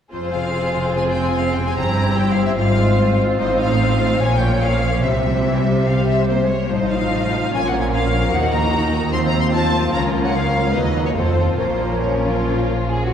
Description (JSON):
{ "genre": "classical", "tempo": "147 BPM", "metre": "4/4", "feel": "uneven beats, rubato", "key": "F minor, Bb minor from 6.7 s", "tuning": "A4 = 440 Hz", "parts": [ { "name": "rich symphonic violin section", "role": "melody", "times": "0.1-12.9 s", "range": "Bb4 to C6", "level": "-24 LUFS", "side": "left 2 dB", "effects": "none" }, { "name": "warm symphonic violin section", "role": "second line", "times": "0.1-13.1 s", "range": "C4 to Db5", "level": "-24 LUFS", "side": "left 1 dB", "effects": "none" }, { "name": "clear symphonic viola section", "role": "accompaniment", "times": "0.1-13.1 s", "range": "E3 to F4", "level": "-24 LUFS", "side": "right 2 dB", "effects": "none" }, { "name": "concert harp", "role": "arpeggios", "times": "0.1-13.1 s", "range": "F2 to C5", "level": "-23 LUFS", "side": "left 4 dB", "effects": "none" }, { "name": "rich symphonic cello section", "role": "bass", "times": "0.1-13.1 s", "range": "Db2 to C3", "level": "-23 LUFS", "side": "right 2 dB", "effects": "none" }, { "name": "rich symphonic double bass section", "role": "bass", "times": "0.1-13.1 s", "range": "F1 to Eb2", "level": "-24 LUFS", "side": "right 2 dB", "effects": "none" } ], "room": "wet concert hall reverb, RT60 2.0 s", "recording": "heard from further back in the room", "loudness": "-16 LUFS", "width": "side -8 dB against mid", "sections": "0.1-13.1 A section", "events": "none", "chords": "0.1 Fm; 1.8 C7/G; 2.6 Fm/Ab; 3.4 F7/A; 4.2 Bbm; 5.0 C; 6.7 F7/A; 7.5 Bbm; 8.3 Ebm; 9.1 F7/Eb; 9.9 Bbm/Db; 10.7 B/D#; 11.2 F; 11.6 Bbm" }